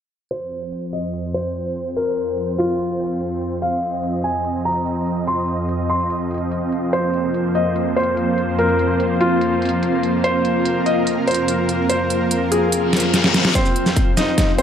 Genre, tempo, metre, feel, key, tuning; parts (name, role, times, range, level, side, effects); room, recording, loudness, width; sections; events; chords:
heavy wobble dubstep; 145 BPM; 4/4; half-time; A4 = 440 Hz
felt-muted upright piano; melody; 0.3-14.6 s; C4 to C6; -22 LUFS; left 1 dB; dub echo
supersaw pad; sustained chords; 0.3-14.6 s; F2 to Eb5; -22 LUFS; right 1 dB; sidechain pumping
dubstep drum kit; drums; 0.3-14.6 s; hi-hat, shaker, snare drum; -20 LUFS; equal; small room ambience
granular cloud pad; texture; 3.7-14.6 s; C4 to C6; -24 LUFS; right 1 dB; built-in reverb, sidechain pumping
reverse cymbal; sound effects; 12.8-13.6 s; -24 LUFS; left 6 dB
electronic kick drum; drums; 13.6-14.5 s; -18 LUFS; equal; small room ambience
moderate lush hall reverb, RT60 2.0 s; low-pass filter; -17 LUFS; side -8 dB against mid
0.3-13.6 A section; 13.6-14.6 B section
fade-in on ambient pad 0.3-13.6; filter sweep 0.3-13.6; reverse cymbal 12.8-13.6; drum fill 12.9-13.6, 13.6-14.6; build-up 13.6-14.6
0.3 F5